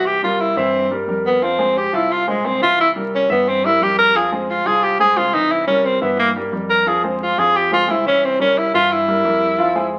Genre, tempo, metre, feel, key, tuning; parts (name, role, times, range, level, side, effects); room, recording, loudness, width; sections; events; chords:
latin; 176 BPM; 4/4; straight; F harmonic minor; A4 = 440 Hz
breathy tenor saxophone; melody; 0.0-9.9 s; Ab3 to Bb4; -18 LUFS; equal
warm grand piano; accompaniment; 0.0-10.0 s; E3 to F5; -24 LUFS; equal
fingered electric bass; bass; 0.0-10.0 s; C2 to G2; -34 LUFS; equal
wet studio reverb, RT60 0.9 s; very old 78 rpm record, vinyl crackle; -17 LUFS; mono
0.0-10.0 A section
tenor saxophone solo 0.0-10.0
0.1 C7; 1.4 Fm; 2.8 C7; 4.1 Fm; 5.5 C7; 6.9 Fm; 8.2 C7